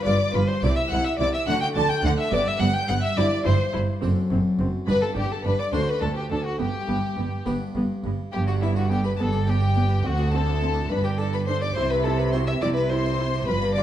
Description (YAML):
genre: classical, baroque-style concerto movement with solo episodes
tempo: 70 BPM (dotted quarters)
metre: 6/8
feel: straight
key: G major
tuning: A4 = 440 Hz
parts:
  - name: warm studio violin section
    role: melody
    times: 0.0-13.8 s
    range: E5 to A6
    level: -34 LUFS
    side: left 5 dB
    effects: none
  - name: warm violin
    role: melody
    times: 0.0-13.8 s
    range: E4 to A5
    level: -27 LUFS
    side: left 2 dB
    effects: none
  - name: rich chamber violin section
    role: second line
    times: 0.0-13.8 s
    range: E4 to A5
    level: -32 LUFS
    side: left 2 dB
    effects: none
  - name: harpsichord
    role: accompaniment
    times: 0.0-13.8 s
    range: D2 to D5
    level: -31 LUFS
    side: equal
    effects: none
  - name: warm chamber viola section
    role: accompaniment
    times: 0.1-13.8 s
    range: B3 to F4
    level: -31 LUFS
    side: right 1 dB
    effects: none
  - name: warm chamber cello section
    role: bass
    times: 0.1-13.8 s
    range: D2 to D3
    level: -27 LUFS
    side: right 2 dB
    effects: none
  - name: warm studio double bass section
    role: bass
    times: 0.1-13.8 s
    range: F#1 to D2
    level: -27 LUFS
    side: right 2 dB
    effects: none
room: moderate recital hall reverb, RT60 1.4 s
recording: dark, warm production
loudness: -21 LUFS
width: side -11 dB against mid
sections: 0.0-8.3 A section; 8.3-13.8 A section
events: none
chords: 0.0 G5; 0.6 C; 1.5 D; 2.3 G; 3.2 C/G; 4.0 D7/F#; 4.9 G; 5.7 D; 6.6 G; 10.1 D5; 10.9 G5; 11.8 C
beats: 0.63 | 1.48 2.32 | 3.17 4.02 | 4.87 5.73 | 6.60 7.46 | 8.34 9.20 | 10.05 10.91 | 11.76 12.62 | 13.47